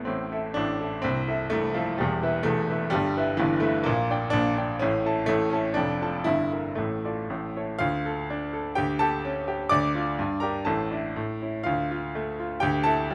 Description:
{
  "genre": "classical, virtuoso piano study",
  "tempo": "114-131 BPM",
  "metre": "2/4",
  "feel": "rubato",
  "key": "A minor, D minor from 3.9 s",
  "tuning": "A4 = 439 Hz",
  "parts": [
    { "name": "clear grand piano", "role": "solo", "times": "0.0-13.1 s", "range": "C1 to D6", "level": "-27 LUFS", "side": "equal", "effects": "none" }
  ],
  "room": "light reverb",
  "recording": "none",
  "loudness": "-27 LUFS",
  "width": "mono",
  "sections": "0.1-7.8 A section; 7.8-13.1 B section",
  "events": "none",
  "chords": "0.0 A5; 1.0 Am/C; 2.0 Em; 2.9 Em/G; 3.9 Gm/Bb; 4.8 A; 5.8 Dm/F; 6.3 Edim/G; 6.8 Dm/A; 7.3 A; 7.8 Dm; 8.8 A7/D; 9.7 Dm; 10.2 Gm; 10.7 Asus4; 11.2 A; 11.7 Dm; 12.6 A5/D"
}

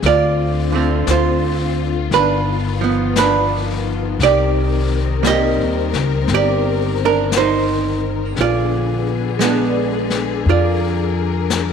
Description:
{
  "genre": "jazz ballad",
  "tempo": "58 BPM",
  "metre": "4/4",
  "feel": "swing 68% on 8ths",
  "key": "unclear",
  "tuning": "A4 = 440 Hz",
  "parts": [
    { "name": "archtop guitar, miked and amplified", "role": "accompaniment", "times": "0.0-11.7 s", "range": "D3 to Eb5", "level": "-18 LUFS", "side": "right 7 dB", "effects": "none" },
    { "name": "warm symphonic string section", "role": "sustained chords", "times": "0.0-11.7 s", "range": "D3 to Bb4", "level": "-23 LUFS", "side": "left 12 dB", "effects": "none" },
    { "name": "upright bass", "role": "bass", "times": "0.0-11.7 s", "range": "G1 to F2", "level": "-20 LUFS", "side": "left 2 dB", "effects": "none" },
    { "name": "jazz brush drum kit", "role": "drums", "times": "0.0-11.7 s", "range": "brushed snare drum, hi-hat, snare drum", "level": "-26 LUFS", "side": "left 8 dB", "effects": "none" }
  ],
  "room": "moderate echo chamber reverb, RT60 2.3 s",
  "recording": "1960s-style stereo with parts hard left and right",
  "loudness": "-15 LUFS",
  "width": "side -7 dB against mid",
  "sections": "0.0-11.7 A section",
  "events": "none",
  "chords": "0.0 Dm7; 2.1 G7b13; 4.2 Cm7; 8.4 Bb7b9"
}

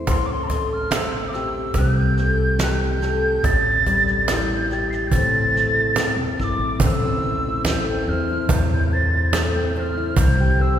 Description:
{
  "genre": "acoustic folk duo or small band",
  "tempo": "71 BPM",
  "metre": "4/4",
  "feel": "straight",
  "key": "A minor",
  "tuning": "A4 = 440 Hz",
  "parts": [
    { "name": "fingerpicked steel-string acoustic guitar", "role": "accompaniment", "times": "0.0-10.8 s", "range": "A2 to C5", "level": "-25 LUFS", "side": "left 2 dB", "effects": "none" },
    { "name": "upright bass", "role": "bass", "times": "0.0-10.8 s", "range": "E1 to E2", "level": "-23 LUFS", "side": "equal", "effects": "none" },
    { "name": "mellow wooden whistle", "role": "melody", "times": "0.1-10.8 s", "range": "A5 to C7", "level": "-23 LUFS", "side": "right 1 dB", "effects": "none" },
    { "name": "soft brush drum kit", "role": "drums", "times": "0.1-10.4 s", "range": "kick drum, snare drum", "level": "-29 LUFS", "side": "equal", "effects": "none" },
    { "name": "cajon", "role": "percussion", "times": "0.1-10.4 s", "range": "none", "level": "-24 LUFS", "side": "right 1 dB", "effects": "none" }
  ],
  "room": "wet concert hall reverb, RT60 2.6 s",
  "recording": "recorded in a church or concert hall",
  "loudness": "-18 LUFS",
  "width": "side -10 dB against mid",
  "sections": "0.0-6.8 A section; 6.8-10.8 B section",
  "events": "none",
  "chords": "0.1 Am7; 3.4 C/A; 5.1 Am; 10.2 C"
}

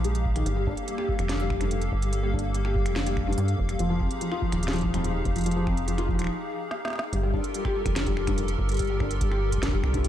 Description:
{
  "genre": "IDM",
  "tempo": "144 BPM",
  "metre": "4/4",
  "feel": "straight",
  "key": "G minor",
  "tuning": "A4 = 440 Hz",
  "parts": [
    { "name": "hollow soft pad", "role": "sustained chords", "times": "0.0-10.1 s", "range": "Bb3 to F5", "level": "-34 LUFS", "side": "equal", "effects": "ensemble chorus, sidechain pumping" },
    { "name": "felt-muted upright piano", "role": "arpeggios", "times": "0.0-10.1 s", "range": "F2 to G4", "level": "-30 LUFS", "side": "left 3 dB", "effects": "tape echo" },
    { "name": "rubbery square bass", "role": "bass", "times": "0.0-10.1 s", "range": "Eb1 to G2", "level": "-27 LUFS", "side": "equal", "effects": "none" },
    { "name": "organic electronic drum kit", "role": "drums", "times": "0.0-10.1 s", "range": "finger snaps, hi-hat, snare drum", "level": "-35 LUFS", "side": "right 1 dB", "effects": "studio reverb, analog delay" },
    { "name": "electronic kick drum", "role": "drums", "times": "0.3-10.0 s", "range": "none", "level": "-31 LUFS", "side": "equal", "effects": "studio reverb" }
  ],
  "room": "light reverb, digital ambience",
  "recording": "echo-heavy mix",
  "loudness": "-24 LUFS",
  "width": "side -11 dB against mid",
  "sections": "0.0-7.1 A section; 7.1-10.1 B section",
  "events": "break 6.3-7.1; drum fill 6.7-7.1",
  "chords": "0.5 Gm9; 3.8 Fm9; 7.1 Gm9"
}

